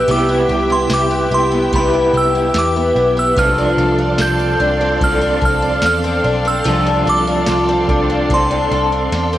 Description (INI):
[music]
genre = dream pop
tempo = 73 BPM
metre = 4/4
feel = straight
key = unclear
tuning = A4 = 440 Hz
[part]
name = glassy synth bell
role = melody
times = 0.0-9.4 s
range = B5 to G6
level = -19 LUFS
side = right 1 dB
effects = chorus, cassette tape, analog delay
[part]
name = electric guitar at the edge of break-up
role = accompaniment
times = 0.0-9.4 s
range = C3 to A4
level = -20 LUFS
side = right 2 dB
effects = tremolo, wide subtle chorus, cassette tape
[part]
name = string machine, violas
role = sustained chords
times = 0.0-9.4 s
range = G4 to C6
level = -23 LUFS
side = equal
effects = ensemble chorus, cassette tape
[part]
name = picked twelve-string acoustic guitar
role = arpeggios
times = 0.0-9.4 s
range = F3 to A4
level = -17 LUFS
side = left 2 dB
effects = analog chorus, cassette tape, analog delay
[part]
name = vintage muted picked electric bass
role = bass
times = 0.0-9.4 s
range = B1 to E2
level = -21 LUFS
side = equal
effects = none
[part]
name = soft vintage rhythm box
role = drums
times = 0.1-9.3 s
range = kick drum, ride cymbal, snare drum, tambourine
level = -23 LUFS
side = equal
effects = none
[sound]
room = moderate studio reverb, RT60 0.6 s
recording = home recording on cassette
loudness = -13 LUFS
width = side -13 dB against mid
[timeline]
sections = 0.0-9.4 A section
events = drum fill 9.1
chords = 0.0 Cmaj7; 3.4 F6/C